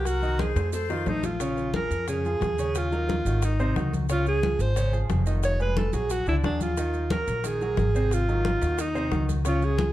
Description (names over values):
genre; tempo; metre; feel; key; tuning
Afro-Cuban jazz; 179 BPM; 4/4; straight; Bb minor; A4 = 438 Hz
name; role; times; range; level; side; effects
warm alto saxophone; melody; 0.0-9.9 s; D4 to Db5; -28 LUFS; right 1 dB; slapback echo, plate reverb
breathy jazz flute; second line; 0.0-1.2 s; Bb4 to C5; -35 LUFS; left 7 dB; none
warm grand piano; accompaniment; 0.0-9.9 s; C3 to Eb5; -32 LUFS; right 1 dB; none
upright bass; bass; 0.0-9.9 s; F1 to F2; -26 LUFS; equal; none
bongos; percussion; 0.1-9.9 s; none; -38 LUFS; left 7 dB; none
congas; percussion; 0.1-9.9 s; none; -32 LUFS; left 2 dB; none
maracas; percussion; 0.1-9.9 s; none; -44 LUFS; right 8 dB; none
room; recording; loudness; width
light reverb; dark, warm production; -23 LUFS; side -14 dB against mid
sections
0.0-1.4 A section; 1.4-9.9 B section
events
drum fill 0.4-1.4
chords
0.1 Cm7b5; 0.7 F7; 1.4 Bbm7; 2.7 Ebm7; 3.4 Ab7; 4.1 Dbmaj9; 5.4 Fm7b5; 6.1 Bb7alt; 6.8 Ebmadd9; 8.1 Ab7